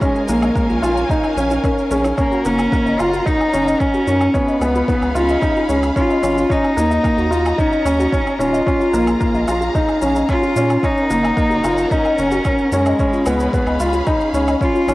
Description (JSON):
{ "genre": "piano and strings electronica", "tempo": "111 BPM", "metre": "4/4", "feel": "straight", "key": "unclear", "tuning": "A4 = 440 Hz", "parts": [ { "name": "rich cello", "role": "melody", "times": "0.0-14.9 s", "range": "Ab3 to F4", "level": "-22 LUFS", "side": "left 1 dB", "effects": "cassette tape" }, { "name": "warm studio string section", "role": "sustained chords", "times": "0.0-14.9 s", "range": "Db4 to Cb6", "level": "-26 LUFS", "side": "left 1 dB", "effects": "cassette tape" }, { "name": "warbly dusty pluck", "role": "arpeggios", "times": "0.0-14.9 s", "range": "Eb4 to Eb5", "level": "-26 LUFS", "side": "left 2 dB", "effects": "lush chorus, sidechain pumping, cassette tape, analog delay" }, { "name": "felt-muted upright piano", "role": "riff", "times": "0.0-14.9 s", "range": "Bb3 to F4", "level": "-17 LUFS", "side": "equal", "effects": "cassette tape" }, { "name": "electronic kick drum", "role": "drums", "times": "0.0-14.7 s", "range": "none", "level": "-21 LUFS", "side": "equal", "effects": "studio reverb, cassette tape" }, { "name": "shaker and woodblock", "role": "drums", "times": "0.0-14.9 s", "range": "none", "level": "-31 LUFS", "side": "equal", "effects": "studio reverb, cassette tape" }, { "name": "round analog bass", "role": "bass", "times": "0.3-14.9 s", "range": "Eb1 to Bb2", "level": "-23 LUFS", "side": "equal", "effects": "sidechain pumping" } ], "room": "light reverb, studio ambience", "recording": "home recording on cassette, lossy compression artefacts", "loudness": "-14 LUFS", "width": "side -18 dB against mid", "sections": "0.0-14.9 A section", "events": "none", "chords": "0.0 Bbm7; 2.2 Gb; 4.3 Db7; 6.5 Ebm7; 8.7 Bbm7; 10.8 Gb; 13.0 Db7" }